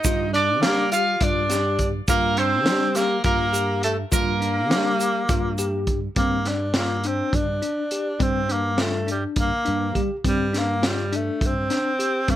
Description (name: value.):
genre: progressive instrumental, band music in an uneven meter.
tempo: 206 BPM (eighths).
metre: 7/8.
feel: straight.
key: G minor.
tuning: A4 = 443 Hz.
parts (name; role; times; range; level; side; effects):
breathy tenor saxophone; melody; 0.0-12.4 s; G3 to F4; -24 LUFS; equal; none.
electric guitar at the edge of break-up; second line; 0.0-5.8 s; A4 to F5; -27 LUFS; right 3 dB; ping-pong delay.
fretless electric bass; bass; 0.0-12.4 s; G2 to G3; -26 LUFS; right 1 dB; ensemble chorus.
crunchy breakbeat drum kit; drums; 0.0-12.4 s; hi-hat, kick drum, snare drum; -25 LUFS; equal; none.
tube shaker; percussion; 0.0-5.9 s; none; -31 LUFS; right 6 dB; none.
bell-like tine electric piano; arpeggios; 0.1-12.4 s; C4 to G4; -28 LUFS; left 3 dB; fast stereo tremolo, plate reverb.
room: light reverb.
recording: none.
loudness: -20 LUFS.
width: side -12 dB against mid.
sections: 0.0-6.2 A section; 6.2-12.4 B section.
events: none.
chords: 0.0 Gm7; 6.2 Gm.